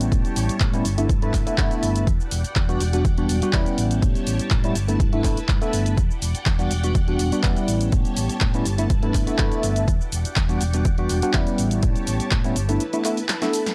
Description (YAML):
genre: filtered disco house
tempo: 123 BPM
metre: 4/4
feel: straight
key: E dorian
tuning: A4 = 438 Hz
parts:
  - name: tine electric piano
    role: accompaniment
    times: 0.0-13.7 s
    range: G3 to A4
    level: -27 LUFS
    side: equal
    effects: phaser, sidechain pumping
  - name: string machine, full ensemble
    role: sustained chords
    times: 0.0-13.7 s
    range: E4 to A5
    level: -36 LUFS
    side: equal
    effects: phaser, ensemble chorus, sidechain pumping
  - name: hollow-body short-scale fingered electric bass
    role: bass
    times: 0.0-12.8 s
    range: E1 to A2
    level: -27 LUFS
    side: equal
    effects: sidechain pumping
  - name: punchy analog drum machine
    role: drums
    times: 0.0-13.7 s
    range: handclaps, hi-hat, shaker, snare drum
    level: -31 LUFS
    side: equal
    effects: overdrive, sidechain pumping on hats, sidechain pumping on perc, sidechain pumping on cymbals
  - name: electronic kick drum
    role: drums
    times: 0.1-12.4 s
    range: none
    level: -24 LUFS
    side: equal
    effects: overdrive
room: digital ambience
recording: dry, gritty hardware recording, cassette tape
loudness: -22 LUFS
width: mono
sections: 0.0-13.7 A section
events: drum fill 13.3-13.7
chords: 0.0 A7; 0.9 G69; 2.1 Em9; 3.8 A7; 4.8 G69; 6.0 Em9; 7.7 A7; 8.7 G69; 9.9 Em9; 11.6 A7; 12.6 G69